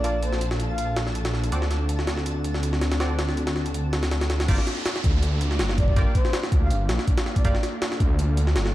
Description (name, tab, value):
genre	drum and bass, jungle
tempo	162 BPM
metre	4/4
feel	swing 54% on 16ths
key	G minor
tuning	A4 = 435 Hz
part	breathy flute-like synth lead	melody	0.0-1.0, 5.8-7.5 s	C5 to F5	-33 LUFS	equal	analog chorus, dub echo
part	airy breathy pad	sustained chords	0.0-8.7 s	Bb3 to A4	-32 LUFS	left 1 dB	chorus, vintage 12-bit sampler grit
part	band-passed chord stab	stabs	0.0-7.5 s	Bb3 to D5	-36 LUFS	right 2 dB	chorus, dub echo
part	detuned saw bass	bass	0.0-8.7 s	G1 to D2	-24 LUFS	equal	none
part	jungle sampler-style drum kit	drums	0.0-8.7 s	crash cymbal, hi-hat, kick drum, snare drum	-25 LUFS	equal	high-pass filter on hats, high-pass filter on snare, high-pass filter on cymbals, high-pass filter on kick, high-pass filter on room
part	twinkling granular texture	texture	0.0-4.5 s	A5	-42 LUFS	left 1 dB	built-in reverb
part	downlifter	sound effects	4.5-7.4 s	none	-37 LUFS	right 3 dB	none
room	light reverb, digital ambience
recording	dark, warm production, vinyl crackle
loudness	-21 LUFS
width	side -15 dB against mid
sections	0.0-4.5 A section; 4.5-8.7 B section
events	drop 4.5-8.7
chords	0.0 Bbmaj7; 1.5 D7; 4.5 Gm7